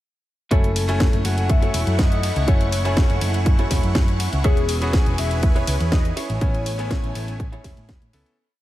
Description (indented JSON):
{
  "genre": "nu-disco, nu disco",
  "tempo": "122 BPM",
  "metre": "4/4",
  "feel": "straight",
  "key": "F# minor",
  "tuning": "A4 = 440 Hz",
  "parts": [
    { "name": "soft octave-layered synth lead", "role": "melody", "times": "0.5-7.8 s", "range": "G#4 to F#5", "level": "-30 LUFS", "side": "left 4 dB", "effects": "chorus, phaser, cassette tape, tape echo" },
    { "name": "bright electric grand piano", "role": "accompaniment", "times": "0.5-8.4 s", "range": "A3 to G#5", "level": "-30 LUFS", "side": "left 1 dB", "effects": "sidechain pumping, tape echo" },
    { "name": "lush unison pad", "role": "sustained chords", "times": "1.1-8.4 s", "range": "A3 to C#6", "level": "-31 LUFS", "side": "equal", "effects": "chorus, phaser, sidechain pumping" },
    { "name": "clean electric guitar", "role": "riff", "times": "0.5-8.3 s", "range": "E4 to C#5", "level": "-32 LUFS", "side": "right 1 dB", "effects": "wide subtle chorus, tape echo" },
    { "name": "hollow-body short-scale picked electric bass", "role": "bass", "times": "0.5-8.2 s", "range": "E1 to A2", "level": "-23 LUFS", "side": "equal", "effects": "tube saturation" },
    { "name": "electronic kick drum", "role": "drums", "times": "0.5-8.0 s", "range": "none", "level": "-19 LUFS", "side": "equal", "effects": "none" },
    { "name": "house drum kit", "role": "drums", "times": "0.5-8.4 s", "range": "hi-hat, ride cymbal, snare drum", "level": "-29 LUFS", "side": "equal", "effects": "none" }
  ],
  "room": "light reverb",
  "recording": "none",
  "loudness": "-18 LUFS",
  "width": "side -15 dB against mid",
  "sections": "0.5-8.4 drop",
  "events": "drop 0.5-8.4; fade-out 5.8-8.4",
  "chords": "0.5 F#m7; 4.4 E6; 6.2 Amaj7",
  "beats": "| 0.51 1.00 1.50 1.99 | 2.48 2.97 3.46 3.96 | 4.45 4.94 5.43 5.92 | 6.41 6.91 7.40 7.89"
}